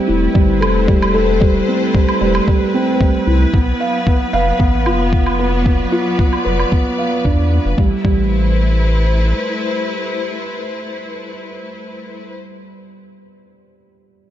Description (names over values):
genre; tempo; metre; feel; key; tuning
piano and strings electronica; 113 BPM; 4/4; straight; A minor; A4 = 436 Hz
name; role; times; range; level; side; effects
clear symphonic string section; sustained chords; 0.0-12.4 s; F#3 to D5; -21 LUFS; left 2 dB; sidechain pumping
felt-muted upright piano; riff; 0.0-14.3 s; G3 to F5; -18 LUFS; right 1 dB; ping-pong delay
warm sub bass; bass; 0.1-9.3 s; E1 to E2; -17 LUFS; equal; sidechain pumping
electronic kick drum; drums; 0.4-8.2 s; none; -14 LUFS; equal; none
woodblock; drums; 0.6-6.7 s; none; -23 LUFS; right 2 dB; overdrive, low-pass filter on hats, low-pass filter on perc, low-pass filter on snare, low-pass filter on room
room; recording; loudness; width
light reverb, digital ambience; nothing above 7.7 kHz; -13 LUFS; side -11 dB against mid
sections
0.0-7.8 A section; 7.8-12.0 B section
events
none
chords
0.0 Am7; 3.5 Bdim; 7.8 Am7